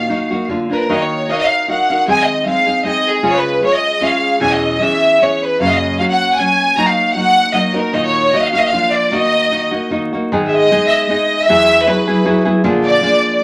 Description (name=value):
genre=mexican folk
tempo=153 BPM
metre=3/4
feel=swing 53% on 8ths, rubato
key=Eb minor, G# minor from 10.3 s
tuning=A4 = 440 Hz
part: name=rich studio violin section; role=melody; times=0.0-13.4 s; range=Ab4 to Bb5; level=-16 LUFS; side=equal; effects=none
part: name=nylon-string guitar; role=accompaniment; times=0.0-13.4 s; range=E2 to F5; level=-19 LUFS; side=equal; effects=none
room=wet club reverb, RT60 0.6 s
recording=vinyl crackle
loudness=-14 LUFS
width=mono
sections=0.0-10.3 A section; 10.3-13.4 B section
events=none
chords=0.5 Bb; 0.9 Ebmadd9; 2.1 Ab/Eb; 3.2 Db; 4.4 E6; 5.6 Gb; 6.8 Ebm/Gb; 7.9 Ebm/Bb; 8.7 Bb; 9.1 Ebm; 10.3 G#m; 11.5 Eadd9; 12.6 A#7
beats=0.07 0.47 | 0.87 1.27 1.66 | 2.06 2.45 2.84 | 3.22 3.61 4.00 | 4.39 4.79 5.19 | 5.59 5.98 6.37 | 6.76 7.15 7.54 | 7.93 8.32 8.71 | 9.10 9.50 9.90 | 10.30 10.70 11.09 | 11.47 11.87 12.25 | 12.64 13.02 13.41